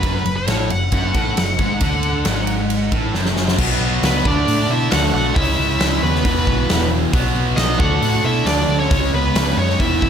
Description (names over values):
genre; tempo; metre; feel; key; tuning
hard rock; 135 BPM; 4/4; straight; F# minor; A4 = 436 Hz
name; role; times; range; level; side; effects
high-gain lead guitar; melody; 0.0-10.1 s; B4 to F#5; -22 LUFS; left 1 dB; distortion
cranked stack guitar; riff; 0.0-10.1 s; E2 to D4; -24 LUFS; left 11 dB; overdrive
overdriven electric guitar; riff; 0.0-10.1 s; E2 to D4; -23 LUFS; right 11 dB; none
hollow-body short-scale picked electric bass; bass; 0.0-10.1 s; E1 to B2; -21 LUFS; equal; none
huge arena drum kit; drums; 0.0-10.1 s; crash cymbal, hi-hat, kick drum, ride cymbal, snare drum; -20 LUFS; equal; none
smooth overdriven lead guitar; second line; 4.1-10.1 s; B3 to F#4; -26 LUFS; right 4 dB; none
room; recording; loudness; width
light reverb, small room ambience; none; -15 LUFS; side -8 dB against mid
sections
0.0-3.6 A section; 3.6-10.1 B section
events
drum fill 3.1-3.6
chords
0.0 F#m; 3.6 B5; 4.3 D5; 5.4 C#m; 6.2 E5; 7.1 B5; 7.8 D; 8.9 C#5